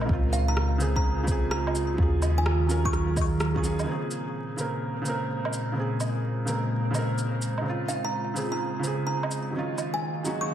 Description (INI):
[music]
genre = future garage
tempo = 127 BPM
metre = 4/4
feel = swing 67% on 16ths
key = Bb minor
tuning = A4 = 440 Hz
[part]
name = felt-muted upright piano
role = accompaniment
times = 0.0-10.5 s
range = Db3 to Bb4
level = -30 LUFS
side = right 2 dB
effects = sidechain pumping, ping-pong delay
[part]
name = warbly tape-like pad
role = sustained chords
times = 0.0-10.5 s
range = Bb2 to F5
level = -30 LUFS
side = equal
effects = chorus, built-in reverb, sidechain pumping
[part]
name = soft 808-style bass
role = bass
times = 0.0-3.9 s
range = Db2 to Eb2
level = -26 LUFS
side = equal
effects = sidechain pumping
[part]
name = electronic woodblock, shaker and rim click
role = drums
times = 0.0-10.4 s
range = none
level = -34 LUFS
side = right 2 dB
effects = small room ambience
[part]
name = electronic kick drum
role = drums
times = 0.1-3.6 s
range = none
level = -27 LUFS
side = equal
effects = small room ambience
[part]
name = kalimba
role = melody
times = 0.3-3.3, 7.9-10.5 s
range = F5 to Db6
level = -33 LUFS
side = equal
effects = ping-pong delay
[sound]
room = moderate plate reverb, RT60 1.5 s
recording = dreamy mix soaked in reverb, vinyl crackle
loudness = -24 LUFS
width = side -10 dB against mid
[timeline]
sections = 0.0-3.9 A section; 3.9-10.5 B section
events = none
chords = 0.1 Dbmaj7; 2.0 Ebm11; 3.9 Bbm9; 7.7 Dbmaj7; 9.5 Ebm11